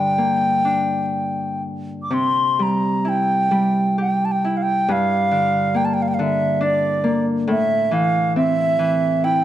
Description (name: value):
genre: celtic folk, Celtic slow air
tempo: 60-71 BPM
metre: 3/4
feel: rubato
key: unclear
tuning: A4 = 439 Hz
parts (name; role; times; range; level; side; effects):
- bright baroque flute; melody; 0.0-9.4 s; D5 to D6; -19 LUFS; right 1 dB; none
- Celtic harp; accompaniment; 0.0-9.4 s; G2 to G4; -20 LUFS; equal; none
room: moderate recital hall reverb, RT60 1.5 s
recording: dark, warm production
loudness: -17 LUFS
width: side -12 dB against mid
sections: 0.0-2.1 A section; 2.1-9.4 B section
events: none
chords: 0.0 Gm; 2.1 C; 4.9 Gm; 7.5 Am